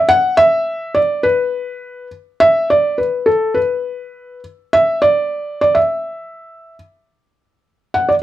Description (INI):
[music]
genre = andean folk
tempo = 103 BPM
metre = 2/4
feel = straight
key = B minor pentatonic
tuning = A4 = 440 Hz
[part]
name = felt-muted upright piano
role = solo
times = 0.0-8.1 s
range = A4 to F#5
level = -13 LUFS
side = equal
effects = none
[sound]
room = light reverb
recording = close, detailed microphones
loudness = -13 LUFS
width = side -14 dB against mid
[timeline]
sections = 0.0-2.4 A section; 2.4-7.1 B section; 7.1-8.2 C section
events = none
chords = none